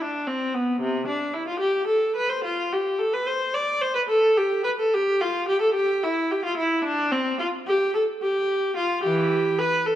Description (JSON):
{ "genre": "classical, baroque-style suite movement for unaccompanied viola", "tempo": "73 BPM (dotted quarters)", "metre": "12/8", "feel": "rubato", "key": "unclear", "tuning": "A4 = 440 Hz", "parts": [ { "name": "rich viola", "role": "solo", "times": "0.0-10.0 s", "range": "C3 to D5", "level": "-21 LUFS", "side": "equal", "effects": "none" } ], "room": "moderate scoring stage reverb, RT60 1.6 s", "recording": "dark, warm production", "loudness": "-21 LUFS", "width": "side -12 dB against mid", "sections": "0.0-10.0 A section", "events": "none", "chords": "none" }